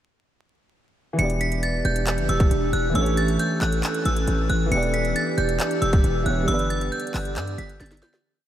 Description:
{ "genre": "hip hop, trap", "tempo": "136 BPM", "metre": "4/4", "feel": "half-time", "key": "E dorian", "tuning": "A4 = 439 Hz", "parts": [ { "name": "clear concert grand piano", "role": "accompaniment", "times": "1.1-8.3 s", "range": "E3 to D5", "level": "-28 LUFS", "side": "equal", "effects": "none" }, { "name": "metallic FM bell", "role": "melody", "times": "1.2-8.2 s", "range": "E6 to C#7", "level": "-27 LUFS", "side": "right 1 dB", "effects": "chorus, analog delay" }, { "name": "warbly tape-like pad", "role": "sustained chords", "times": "1.7-8.2 s", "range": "D3 to A4", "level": "-27 LUFS", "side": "right 1 dB", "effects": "chorus, built-in reverb, phaser" }, { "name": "hard-hitting 808-style bass", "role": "bass", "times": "1.2-8.0 s", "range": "E1 to G2", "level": "-25 LUFS", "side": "equal", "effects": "none" }, { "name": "trap drum kit", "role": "drums", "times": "1.2-8.2 s", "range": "handclaps, hi-hat, kick drum, snare drum", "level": "-26 LUFS", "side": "equal", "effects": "none" } ], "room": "moderate huge ambient reverb, RT60 7.2 s", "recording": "dreamy mix soaked in reverb, vinyl crackle", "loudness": "-20 LUFS", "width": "side -11 dB against mid", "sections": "1.2-8.2 hook", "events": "fade-out 6.5-8.2; drum fill 7.8-8.2", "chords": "1.2 Em7; 3.0 A; 4.7 Em7; 6.5 G" }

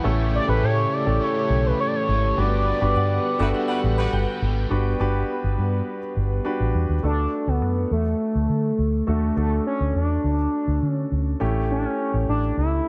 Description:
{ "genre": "pop", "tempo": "103 BPM", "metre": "4/4", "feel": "straight", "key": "D major", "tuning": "A4 = 440 Hz", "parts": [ { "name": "distorted electric guitar", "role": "accompaniment", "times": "0.0-4.7 s", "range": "G2 to A3", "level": "-38 LUFS", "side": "equal", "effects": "distortion, ensemble chorus" }, { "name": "warm concert grand piano", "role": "accompaniment", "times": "0.0-12.9 s", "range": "A3 to B4", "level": "-30 LUFS", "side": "equal", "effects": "none" }, { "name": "brassy analog pad", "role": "sustained chords", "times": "0.0-7.0 s", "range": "C#3 to B4", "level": "-33 LUFS", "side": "equal", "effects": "chorus" }, { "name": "vintage muted fingered electric bass", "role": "bass", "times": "0.0-12.8 s", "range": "G1 to D3", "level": "-25 LUFS", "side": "equal", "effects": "none" }, { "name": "expressive synth lead", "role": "melody", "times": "0.3-12.9 s", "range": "A3 to D5", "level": "-27 LUFS", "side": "equal", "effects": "chorus" }, { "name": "shimmering bell with halo", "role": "second line", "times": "3.0-4.7 s", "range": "E5 to G5", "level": "-36 LUFS", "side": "equal", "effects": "ensemble chorus, delay" }, { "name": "clear horn section", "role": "stabs", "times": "3.4-4.4 s", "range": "G3 to B4", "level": "-35 LUFS", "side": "equal", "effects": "none" } ], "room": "light reverb, digital ambience", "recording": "nothing above 10.8 kHz", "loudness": "-23 LUFS", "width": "mono", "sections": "0.0-4.7 A section; 4.7-7.0 B section; 7.0-12.9 C section", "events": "band accent 2.4-4.7", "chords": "0.0 A7; 2.4 Gmaj7; 7.0 D; 11.4 A7" }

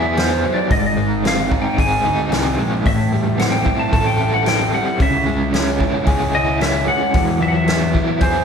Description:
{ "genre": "psychedelic rock", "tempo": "112 BPM", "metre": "4/4", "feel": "straight", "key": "unclear", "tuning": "A4 = 440 Hz", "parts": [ { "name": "clean lap steel guitar", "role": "melody", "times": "0.0-8.4 s", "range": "C5 to A5", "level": "-21 LUFS", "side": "equal", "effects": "slapback echo" }, { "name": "crunchy overdriven guitar", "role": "riff", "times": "0.0-8.4 s", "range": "G#2 to A4", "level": "-18 LUFS", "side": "equal", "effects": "tremolo" }, { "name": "fuzz picked electric bass", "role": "bass", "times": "0.0-8.4 s", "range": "G#1 to E2", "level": "-23 LUFS", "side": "equal", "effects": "overdrive" }, { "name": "vintage drum kit", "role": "drums", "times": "0.2-8.3 s", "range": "hi-hat, kick drum, snare drum", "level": "-21 LUFS", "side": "equal", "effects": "none" } ], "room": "moderate large studio reverb, RT60 0.9 s", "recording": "band playing live in one room", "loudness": "-15 LUFS", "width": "side -6 dB against mid", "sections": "0.0-8.4 A section", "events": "none", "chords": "0.0 Eadd9; 0.7 G#; 2.9 Am7; 5.0 C#m; 7.1 Eadd9" }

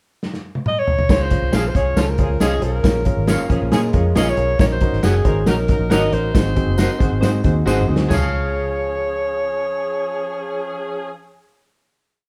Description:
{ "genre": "uptempo 1960s-style soul", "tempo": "137 BPM", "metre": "4/4", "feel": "straight", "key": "Db major", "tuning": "A4 = 439 Hz", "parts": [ { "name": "warm soul drum kit", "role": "drums", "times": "0.2-8.2 s", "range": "crash cymbal, hi-hat, kick drum, snare drum, toms", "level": "-21 LUFS", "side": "equal", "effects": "none" }, { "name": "warm alto saxophone", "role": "melody", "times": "0.7-11.1 s", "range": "Ab4 to Eb5", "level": "-26 LUFS", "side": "equal", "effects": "none" }, { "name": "dark upright piano", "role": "accompaniment", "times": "1.1-11.1 s", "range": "C4 to Eb5", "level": "-27 LUFS", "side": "equal", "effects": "none" }, { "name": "vintage muted fingered electric bass", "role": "bass", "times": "1.1-11.1 s", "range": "Gb1 to Bb2", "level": "-23 LUFS", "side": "equal", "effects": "none" }, { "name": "tambourine", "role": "percussion", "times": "1.1-8.3 s", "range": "none", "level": "-41 LUFS", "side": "equal", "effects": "none" }, { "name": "electric guitar at the edge of break-up", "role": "stabs", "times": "1.5-11.6 s", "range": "Gb4 to F5", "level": "-32 LUFS", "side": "equal", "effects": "spring reverb" }, { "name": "clear horn section", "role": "second line", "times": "1.8-11.1 s", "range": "F3 to C5", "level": "-29 LUFS", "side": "equal", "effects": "none" }, { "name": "electric guitar through a small old amp", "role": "riff", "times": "3.3-4.3 s", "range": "Db3 to F4", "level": "-29 LUFS", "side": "equal", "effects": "none" } ], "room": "light reverb", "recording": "band playing live in one room", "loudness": "-18 LUFS", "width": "mono", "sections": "0.0-1.1 pickup bar; 1.1-8.1 verse; 8.1-11.6 final chord", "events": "drum fill 0.2-1.1, 7.7-8.1", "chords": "0.0 N.C.; 1.1 Dbmaj7; 2.8 Bbm7; 4.6 Ebm7; 6.4 Ab7; 8.1 Db" }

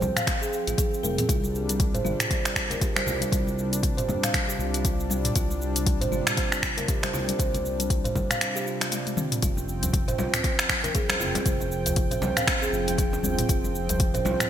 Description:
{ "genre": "afro house", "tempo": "118 BPM", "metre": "4/4", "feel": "swing 58% on 16ths", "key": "unclear", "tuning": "A4 = 440 Hz", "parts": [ { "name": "warm analog pad", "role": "sustained chords", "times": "0.0-14.5 s", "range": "C3 to G5", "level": "-33 LUFS", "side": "equal", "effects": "chorus, sidechain pumping" }, { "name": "smooth gliding synth bass", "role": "bass", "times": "0.0-14.4 s", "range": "F1 to F2", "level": "-31 LUFS", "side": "equal", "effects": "sidechain pumping" }, { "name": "afro-pop drum kit", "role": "drums", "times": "0.0-14.5 s", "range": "finger snaps, hi-hat, shaker, toms", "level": "-27 LUFS", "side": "equal", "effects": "gated reverb" }, { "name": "congas", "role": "percussion", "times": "0.0-14.5 s", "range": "none", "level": "-34 LUFS", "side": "left 3 dB", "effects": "none" }, { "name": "buzzing kalimba", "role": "arpeggios", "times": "0.2-14.4 s", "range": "C4 to F5", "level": "-30 LUFS", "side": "right 2 dB", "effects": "sidechain pumping, low-pass filter, ping-pong delay" }, { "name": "electronic kick drum", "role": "drums", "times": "0.3-14.1 s", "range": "none", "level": "-27 LUFS", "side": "equal", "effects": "overdrive" }, { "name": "djembe", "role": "percussion", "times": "9.6-14.5 s", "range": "none", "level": "-36 LUFS", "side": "right 2 dB", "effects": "none" } ], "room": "moderate lush hall reverb, RT60 2.1 s", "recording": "bright 1980s-style digital production", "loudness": "-23 LUFS", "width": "side -10 dB against mid", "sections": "0.0-14.5 A section", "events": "drum fill 8.9-9.4", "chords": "0.0 Fm; 1.3 C5; 9.4 F5" }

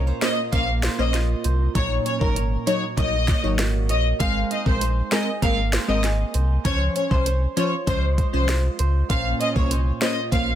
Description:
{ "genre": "dancehall", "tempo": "98 BPM", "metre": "4/4", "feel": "straight", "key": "Db major", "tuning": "A4 = 438 Hz", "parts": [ { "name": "flamenco guitar", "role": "arpeggios", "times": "0.0-10.6 s", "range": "Bb2 to Db5", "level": "-30 LUFS", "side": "right 8 dB", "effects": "none" }, { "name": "sub bass with octave", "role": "bass", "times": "0.0-10.6 s", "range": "Ab1 to Db2", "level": "-22 LUFS", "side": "equal", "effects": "none" }, { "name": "warm studio violin section", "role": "melody", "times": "0.2-10.4 s", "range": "Bb4 to F5", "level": "-26 LUFS", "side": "left 2 dB", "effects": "ping-pong delay" }, { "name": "wavetable chord stab", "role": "accompaniment", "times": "0.2-10.5 s", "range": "F3 to Db5", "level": "-28 LUFS", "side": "left 1 dB", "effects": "none" }, { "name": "island pop drum kit", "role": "drums", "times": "0.2-10.5 s", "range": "hi-hat, kick drum, rim click, snare drum", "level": "-24 LUFS", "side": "equal", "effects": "none" } ], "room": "little or no reverb", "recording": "dense, heavily limited modern master", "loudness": "-19 LUFS", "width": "side -11 dB against mid", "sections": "0.0-10.6 A section", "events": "none", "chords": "0.0 Bbmadd9; 1.8 Ebm7; 4.2 Abadd9; 6.7 Dbmaj7; 9.1 Bbmadd9" }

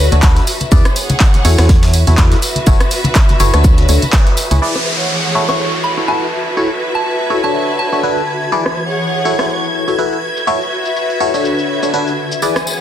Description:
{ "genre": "piano house", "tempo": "123 BPM", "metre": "4/4", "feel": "swing 56% on 16ths", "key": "unclear", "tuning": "A4 = 438 Hz", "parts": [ { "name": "barking FM electric piano", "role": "riff", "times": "0.0-12.5 s", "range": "D4 to D5", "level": "-18 LUFS", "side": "left 1 dB", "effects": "phaser, sidechain pumping, low-pass filter, dub echo" }, { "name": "organ-like FM bass", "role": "bass", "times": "0.0-4.6 s", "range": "F#1 to E2", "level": "-12 LUFS", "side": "equal", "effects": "sidechain pumping" }, { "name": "clear studio string section", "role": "texture", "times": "0.0-12.8 s", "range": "D3 to F#5", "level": "-20 LUFS", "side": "equal", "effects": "sidechain pumping" }, { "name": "house drum kit", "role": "drums", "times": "0.1-12.6 s", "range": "handclaps, hi-hat, rim click, shaker", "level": "-20 LUFS", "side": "right 1 dB", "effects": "overdrive, low-pass filter on hats, low-pass filter on snare, low-pass filter on perc, low-pass filter on room" }, { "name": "congas and tambourine", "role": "percussion", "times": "0.1-4.6, 12.4-12.8 s", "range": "none", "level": "-21 LUFS", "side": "left 2 dB", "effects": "none" }, { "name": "breakbeat sampler-style drum kit", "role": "drums", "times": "0.2-4.5 s", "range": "hi-hat, shaker, snare drum", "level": "-28 LUFS", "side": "left 1 dB", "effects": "high-pass filter on snare, high-pass filter on perc, high-pass filter on hats" }, { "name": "electronic kick drum", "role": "drums", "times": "0.2-4.2 s", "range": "none", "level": "-11 LUFS", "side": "equal", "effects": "overdrive" }, { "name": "string machine, violins", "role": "sustained chords", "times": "4.6-12.8 s", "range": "G#5 to G#6", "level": "-24 LUFS", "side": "equal", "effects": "ensemble chorus, sidechain pumping" }, { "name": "downlifter", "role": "sound effects", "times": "4.6-8.5 s", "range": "none", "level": "-21 LUFS", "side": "equal", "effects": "none" }, { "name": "soft synth bell", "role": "melody", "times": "5.5-8.3 s", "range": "A5 to C#6", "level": "-21 LUFS", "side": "equal", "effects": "chorus, phaser, dub echo" } ], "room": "light reverb, digital ambience", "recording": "dense, heavily limited modern master", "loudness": "-11 LUFS", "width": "side -11 dB against mid", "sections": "0.0-4.6 A section; 4.6-12.8 B section", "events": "band accent 4.1; filter sweep on drum 4.6-12.8; filter sweep on string machine 4.6-12.8", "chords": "0.0 Dmaj7; 0.7 E7; 1.4 A6/E; 2.4 F#m7; 3.6 Dmaj7; 4.1 C#m7; 4.6 E7; 5.4 A6/E; 6.3 Dmaj7; 8.5 E7; 9.3 A6/E; 10.2 Dmaj7" }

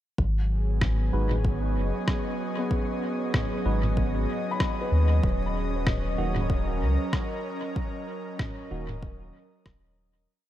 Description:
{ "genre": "ambient dub", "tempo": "95 BPM", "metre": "4/4", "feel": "swing 57% on 16ths", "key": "G# minor", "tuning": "A4 = 440 Hz", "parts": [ { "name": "airy breathy pad", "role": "sustained chords", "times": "0.2-10.3 s", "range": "F#3 to D#5", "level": "-32 LUFS", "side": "right 1 dB", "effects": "chorus" }, { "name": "soft dub sub bass", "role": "bass", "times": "0.2-10.3 s", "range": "D#1 to D#2", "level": "-26 LUFS", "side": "equal", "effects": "none" }, { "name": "electronic kick drum", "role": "drums", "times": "0.2-9.8 s", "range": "none", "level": "-29 LUFS", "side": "equal", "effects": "small room ambience" }, { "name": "wind-like tuned noise texture", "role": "texture", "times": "0.9-10.3 s", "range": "C#4 to C#5", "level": "-39 LUFS", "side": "equal", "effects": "built-in reverb" }, { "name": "electronic rim click and congas", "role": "drums", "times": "0.8-9.8 s", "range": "none", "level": "-33 LUFS", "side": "equal", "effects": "small room ambience, dub echo" }, { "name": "tine electric piano", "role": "stabs", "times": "1.1-8.9 s", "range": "D#3 to B4", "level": "-37 LUFS", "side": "right 3 dB", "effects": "wide subtle chorus, low-pass filter, dub echo" }, { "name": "felt-muted upright piano", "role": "arpeggios", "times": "2.6-5.4 s", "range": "B3 to B5", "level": "-36 LUFS", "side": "left 3 dB", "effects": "tape echo" } ], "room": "little or no reverb", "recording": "none", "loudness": "-24 LUFS", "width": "side -12 dB against mid", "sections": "0.2-10.3 groove", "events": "filter sweep on tine electric piano 0.2-10.3; fade-out 6.9-10.3", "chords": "0.2 G#m7; 5.2 D#m7" }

